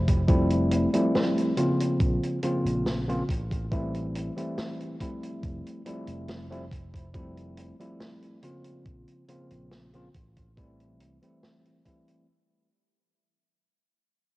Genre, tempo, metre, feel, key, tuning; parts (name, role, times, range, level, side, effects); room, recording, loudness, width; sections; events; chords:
vaporwave; 70 BPM; 4/4; straight; A4 = 444 Hz
sustaining fretless electric bass; bass; 0.0-11.2 s; F1 to C2; -32 LUFS; equal; tube saturation
electronic kick drum; drums; 0.1-12.0 s; -27 LUFS; equal; overdrive
vintage drum kit; drums; 0.1-12.2 s; hi-hat, snare drum; -35 LUFS; equal
tine electric piano; accompaniment; 0.3-12.3 s; Db3 to F4; -28 LUFS; equal; wide subtle chorus, tape echo
light reverb, small room ambience; home recording on cassette; -24 LUFS; side -19 dB against mid
0.0-12.3 A section
fade-out 0.0-12.3
0.0 Fmaj9; 1.6 Bbmadd9; 3.3 Am7; 5.4 Fmaj9; 8.4 Bbmadd9; 10.1 Am7